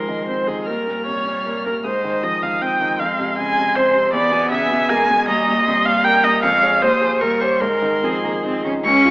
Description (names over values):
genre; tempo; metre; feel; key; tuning
quick classical-period movement for piano quartet; 155 BPM; 3/4; rubato; Ab major; A4 = 439 Hz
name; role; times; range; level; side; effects
clear violin; melody; 0.0-9.1 s; G#5 to F6; -24 LUFS; left 2 dB; none
rich cello; second line; 0.0-9.1 s; F3 to Db4; -26 LUFS; right 1 dB; none
clear grand piano; accompaniment; 0.0-9.1 s; Db2 to Db5; -23 LUFS; equal; none
rich viola; accompaniment; 0.0-9.1 s; Db4 to G#5; -17 LUFS; right 1 dB; none
room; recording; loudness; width
moderate recital hall reverb, RT60 1.6 s; AM radio sound; -15 LUFS; side -23 dB against mid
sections
0.0-8.9 A section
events
none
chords
0.0 Ab; 0.7 Eb9; 1.9 Ab; 3.0 Fm; 4.1 E7; 5.3 Eb; 6.4 Db/F; 6.8 Ab/Eb; 7.2 Eb7; 7.6 Ab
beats
0.28 | 0.68 1.07 1.46 | 1.85 2.23 2.61 | 3.00 3.38 3.76 | 4.13 4.51 4.90 | 5.28 5.66 6.04 | 6.43 6.82 7.21 | 7.61 8.03 8.45 | 8.85